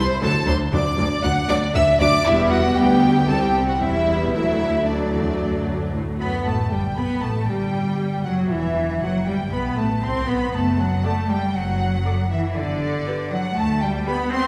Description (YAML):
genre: quick classical-period movement for string orchestra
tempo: 118 BPM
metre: 4/4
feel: straight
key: G major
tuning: A4 = 442 Hz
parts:
  - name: rich studio violin section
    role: melody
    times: 0.0-14.4 s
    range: D5 to F#6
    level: -29 LUFS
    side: equal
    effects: none
  - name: rich studio violin section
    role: second line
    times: 0.0-14.5 s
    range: D4 to C6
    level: -28 LUFS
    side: equal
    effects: none
  - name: rich studio viola section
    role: accompaniment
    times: 0.0-14.2 s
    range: E3 to D5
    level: -26 LUFS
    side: equal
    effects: none
  - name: clear studio cello section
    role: bass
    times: 0.0-14.5 s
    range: C2 to C4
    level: -27 LUFS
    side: equal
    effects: none
  - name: warm studio double bass section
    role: bass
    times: 0.0-14.0 s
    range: E1 to D2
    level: -28 LUFS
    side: equal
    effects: none
room: wet scoring stage reverb, RT60 1.8 s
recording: heard from further back in the room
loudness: -21 LUFS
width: mono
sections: 0.0-6.5 A section; 6.5-14.5 B section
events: none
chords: 0.2 D; 2.3 Em; 3.3 C; 4.3 D; 6.5 G; 8.5 Am7/E; 10.5 D/F# (rootless); 12.6 G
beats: | 0.23 0.73 1.24 1.75 | 2.26 2.77 3.29 3.81 | 4.34 4.87 5.41 5.94 | 6.46 6.98 7.49 8.00 | 8.51 9.02 9.53 10.04 | 10.55 11.05 11.56 12.06 | 12.57 13.07 13.57 14.07